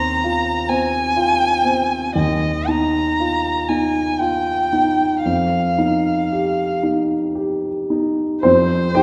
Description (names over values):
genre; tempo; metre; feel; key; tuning
classical, impressionist duo for violin and grand piano; 35-44 BPM (dotted quarters); 6/8; rubato; F minor; A4 = 439 Hz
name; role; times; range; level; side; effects
dark violin; melody; 0.0-9.0 s; C5 to Bb5; -22 LUFS; equal; none
warm baby grand piano; accompaniment; 0.0-9.0 s; Eb2 to G5; -20 LUFS; equal; none
room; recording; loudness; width
wet scoring stage reverb, RT60 1.6 s; heard from further back in the room; -19 LUFS; mono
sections
0.0-8.4 A section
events
none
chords
0.0 Fm/Eb; 2.2 Ebadd9; 5.3 Fsus2